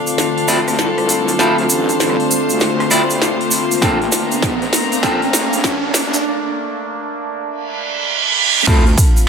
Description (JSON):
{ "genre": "glitch hop", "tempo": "99 BPM", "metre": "4/4", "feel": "swing 64% on 16ths", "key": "D minor", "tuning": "A4 = 441 Hz", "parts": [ { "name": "warbly tape-like pad", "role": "sustained chords", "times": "0.0-9.3 s", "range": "D3 to F4", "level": "-21 LUFS", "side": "equal", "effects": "chorus, built-in reverb, phaser, sidechain pumping" }, { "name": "riser and reverse cymbal", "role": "sound effects", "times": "0.2-8.7 s", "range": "none", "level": "-20 LUFS", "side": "right 4 dB", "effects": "none" }, { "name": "clear studio string section", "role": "texture", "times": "0.0-6.2 s", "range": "D4 to Bb5", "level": "-21 LUFS", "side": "left 3 dB", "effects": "sidechain pumping" }, { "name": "glitchy drum kit", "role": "drums", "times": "0.1-9.3 s", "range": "crash cymbal, hi-hat, rim click, snare drum", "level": "-20 LUFS", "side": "equal", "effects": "overdrive" }, { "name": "tube shaker", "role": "percussion", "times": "0.1-9.3 s", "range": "none", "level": "-21 LUFS", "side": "right 4 dB", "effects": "none" }, { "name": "clean electric guitar", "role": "stabs", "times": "0.5-8.8 s", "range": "C4 to D5", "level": "-20 LUFS", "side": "equal", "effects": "spring reverb, sidechain pumping, digital delay" }, { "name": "wobble bass", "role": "bass", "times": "0.5-9.0 s", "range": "F1 to D2", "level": "-24 LUFS", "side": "equal", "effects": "chorus, high-pass filter" }, { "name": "electronic kick drum", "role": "drums", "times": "3.8-9.1 s", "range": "none", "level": "-15 LUFS", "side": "equal", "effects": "none" } ], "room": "moderate plate reverb, RT60 1.4 s", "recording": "high-pass filter", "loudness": "-13 LUFS", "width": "side -6 dB against mid", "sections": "0.0-8.7 A section", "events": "build-up 0.0-8.7; drum fill 0.0-6.2; filter sweep 0.0-8.7; riser 0.2-6.2; break 6.2-8.7; reverse cymbal 7.7-8.7", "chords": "0.0 Dm7; 3.8 Bbmaj7; 8.7 Dm7" }